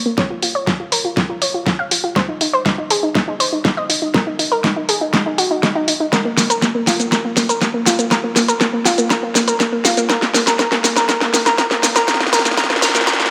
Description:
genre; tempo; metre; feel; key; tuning
progressive house; 121 BPM; 4/4; straight; Bb minor; A4 = 438 Hz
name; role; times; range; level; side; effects
analog pluck; arpeggios; 0.0-13.3 s; Bb3 to F5; -20 LUFS; equal; chorus, sidechain pumping, delay
electronic kick drum; drums; 0.2-13.2 s; none; -26 LUFS; equal; high-pass filter on kick, studio reverb
pop drum kit; drums; 0.2-13.3 s; hi-hat, shaker, snare drum; -19 LUFS; equal; studio reverb
room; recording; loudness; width
moderate concert hall reverb, RT60 2.0 s; high-pass filter; -16 LUFS; mono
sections
0.0-13.3 A section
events
build-up 0.0-13.3; drum fill 0.0-13.3; filter sweep on synth pluck 0.0-13.3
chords
none

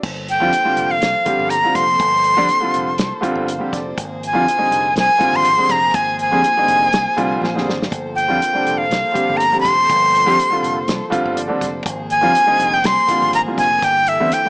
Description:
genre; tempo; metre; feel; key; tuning
electric jazz fusion; 122 BPM; 4/4; swing 55% on 16ths; G phrygian; A4 = 439 Hz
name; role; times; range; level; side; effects
warm studio string section; sustained chords; 0.0-14.5 s; E3 to C5; -28 LUFS; equal; none
fingered electric bass; bass; 0.0-14.5 s; F1 to F2; -28 LUFS; equal; none
damped 70s drum kit; drums; 0.0-14.4 s; crash cymbal, hi-hat, kick drum, snare drum; -24 LUFS; equal; none
breathy bright jazz flute; melody; 0.3-14.5 s; E5 to C6; -14 LUFS; equal; none
warm baby grand piano; accompaniment; 0.4-14.5 s; D3 to Ab5; -21 LUFS; right 1 dB; none
room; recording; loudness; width
light reverb, studio reverb; small speaker sound; -14 LUFS; side -26 dB against mid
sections
0.0-14.5 A section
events
grand piano fill 3.0-4.0, 6.9-7.9, 10.9-11.9; drum fill 7.4-7.9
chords
0.0 Gm11; 4.0 Ab69; 7.9 Gm11; 11.9 Ab69; 13.8 Gm69

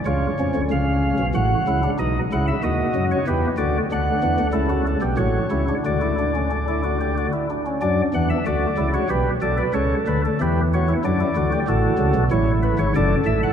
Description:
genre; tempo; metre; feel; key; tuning
classical, baroque-style 3-part fugue for pipe organ; 93 BPM; 3/4; straight; D major from 3.9 s; A4 = 440 Hz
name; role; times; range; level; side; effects
chamber organ, flutes; solo; 0.1-13.5 s; F#1 to F#5; -18 LUFS; equal; none
room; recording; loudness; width
wet cathedral reverb, RT60 5.5 s; in a vast, echoing space; -18 LUFS; side -8 dB against mid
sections
0.0-7.8 A section; 7.8-13.5 B section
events
none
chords
0.1 C#7; 1.4 F#m/A; 2.0 B; 3.3 Em; 3.9 D; 5.2 A; 5.8 D; 9.1 G/B; 9.8 A/C#; 11.0 D/F#; 11.7 A; 13.0 D/F#

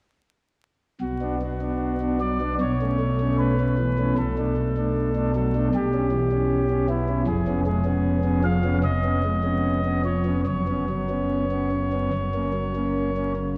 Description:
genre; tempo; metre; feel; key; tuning
classical, chorale-style piece for pipe organ; 76 BPM; 4/4; uneven beats, rubato; B minor; A4 = 444 Hz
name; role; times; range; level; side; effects
chamber organ, principal; solo; 1.0-13.6 s; E#1 to E#5; -24 LUFS; equal; none
room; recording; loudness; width
wet church reverb, RT60 2.4 s; heard from further back in the room, vinyl crackle; -24 LUFS; mono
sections
1.0-13.6 A section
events
none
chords
1.0 Bm; 2.6 A/B; 4.2 D5/B; 5.7 C#dim/B; 7.3 C#7/E#; 10.5 F#sus4; 12.1 F#

